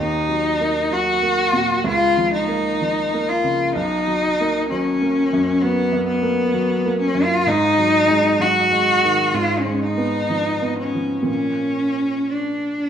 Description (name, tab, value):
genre	classical, romantic duo for cello and grand piano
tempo	63 BPM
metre	4/4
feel	rubato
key	unclear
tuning	A4 = 438 Hz
part	warm cello	melody	0.0-12.9 s	B3 to Gb4	-18 LUFS	left 1 dB	none
part	warm grand piano	accompaniment	0.0-12.9 s	B1 to Cb4	-23 LUFS	right 2 dB	none
room	wet recital hall reverb, RT60 1.6 s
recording	none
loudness	-17 LUFS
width	side -8 dB against mid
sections	0.0-12.9 A section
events	none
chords	0.0 Ebm; 1.9 Bbm/Db; 3.7 Bmaj7; 7.5 Ab5; 9.3 Fdim/Ab; 11.3 Bb